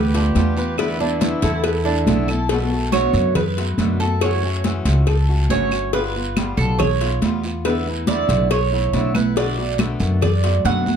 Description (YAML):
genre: latin, Cuban son and guajira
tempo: 140 BPM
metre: 4/4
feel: straight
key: unclear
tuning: A4 = 437 Hz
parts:
  - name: nylon-string guitar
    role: melody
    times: 0.0-2.2 s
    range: A4 to D5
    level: -28 LUFS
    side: left 1 dB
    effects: plate reverb
  - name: growling trumpet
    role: second line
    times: 0.0-2.3 s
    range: E4 to B4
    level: -31 LUFS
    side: right 3 dB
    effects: none
  - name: Cuban tres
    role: arpeggios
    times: 0.0-11.0 s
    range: B3 to F#5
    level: -23 LUFS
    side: right 6 dB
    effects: none
  - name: upright bass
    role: bass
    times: 0.0-11.0 s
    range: G1 to F#2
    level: -20 LUFS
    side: equal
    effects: none
  - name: fingerpicked swing-style acoustic guitar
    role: accompaniment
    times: 0.1-11.0 s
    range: B2 to F#4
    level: -26 LUFS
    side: left 4 dB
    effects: none
  - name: congas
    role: percussion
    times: 0.1-11.0 s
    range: none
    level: -23 LUFS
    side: right 2 dB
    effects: none
  - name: cowbell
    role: percussion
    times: 0.1-10.9 s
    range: none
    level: -26 LUFS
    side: left 7 dB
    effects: none
  - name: guiro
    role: percussion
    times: 0.4-11.0 s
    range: none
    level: -34 LUFS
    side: right 4 dB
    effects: none
  - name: claves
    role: percussion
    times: 0.8-10.4 s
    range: none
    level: -32 LUFS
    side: right 2 dB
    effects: none
room: moderate small room reverb, RT60 0.5 s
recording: dark, warm production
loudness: -17 LUFS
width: side -7 dB against mid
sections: 0.0-2.5 A section; 2.5-11.0 B section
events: Cuban tres solo 2.5-11.0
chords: 0.0 G7; 0.8 E7sus4; 2.5 Bm7; 4.2 F#m7; 5.9 G7; 7.6 E7sus4; 9.4 Bm7